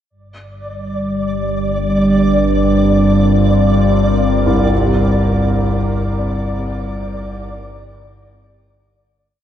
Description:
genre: dark ambient drone.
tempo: free time.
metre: none.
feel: none.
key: G minor.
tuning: A4 = 440 Hz.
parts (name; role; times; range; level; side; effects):
deep dark ambient pad; sustained chords; 0.8-9.3 s; G3 to Bb4; -22 LUFS; equal; chorus, built-in reverb, shimmer reverb.
analog drone; drone; 0.8-9.4 s; G1 to G2; -15 LUFS; equal; wide subtle chorus.
flickering grainy texture; texture; 0.7-9.4 s; D5; -22 LUFS; equal; built-in reverb, shimmer reverb.
dark baby grand piano; arpeggios; 4.5-9.4 s; C2 to C3; -21 LUFS; left 2 dB; tape echo, shimmer reverb.
room: wet cathedral reverb, RT60 5.6 s.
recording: in a vast, echoing space.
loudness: -13 LUFS.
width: side -10 dB against mid.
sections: 0.1-9.3 A section.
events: fade-out on ambient pad 0.1-9.3; fade-out 4.7-9.3.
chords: 0.1 Gm7; 4.7 Eb/G.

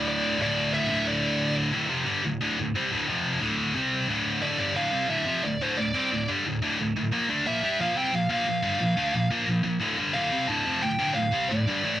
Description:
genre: metal.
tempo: 178 BPM.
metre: 4/4.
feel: straight.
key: D minor.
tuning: A4 = 438 Hz.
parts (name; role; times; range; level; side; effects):
high-gain lead guitar; melody; 0.0-1.5, 4.4-12.0 s; C5 to A5; -29 LUFS; right 1 dB; distortion, cassette tape.
scooped high-gain guitar; riff; 0.0-12.0 s; D2 to G4; -24 LUFS; equal; distortion, cassette tape.
room: light reverb.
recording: home recording on cassette.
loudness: -23 LUFS.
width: side -12 dB against mid.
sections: 0.0-1.7 A section; 1.7-4.4 B section; 4.4-12.0 C section.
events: half time 0.0-1.7.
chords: 0.0 D5; 1.7 Dm; 3.1 F5; 3.4 D5; 3.8 C5; 4.1 D5; 4.4 Dm; 7.1 Bb5; 9.8 Dm.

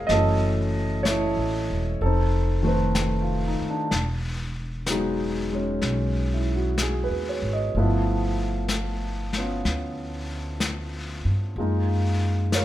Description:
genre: jazz ballad.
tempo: 63 BPM.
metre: 4/4.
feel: swing 67% on 8ths.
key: unclear.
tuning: A4 = 441 Hz.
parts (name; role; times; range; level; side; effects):
warm baby grand piano; accompaniment; 0.0-12.6 s; Eb3 to F5; -26 LUFS; equal; none.
upright bass; bass; 0.0-12.6 s; Fb1 to G2; -26 LUFS; equal; none.
vintage brush drum kit; drums; 0.1-12.6 s; brushed snare drum, hi-hat, snare drum; -32 LUFS; left 3 dB; none.
room: light reverb.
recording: none.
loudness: -23 LUFS.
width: side -13 dB against mid.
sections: 0.0-12.6 A section.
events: none.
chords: 0.1 Gbm7; 2.0 F7#11; 3.9 Emaj9; 7.7 G13; 11.6 Gbmaj13.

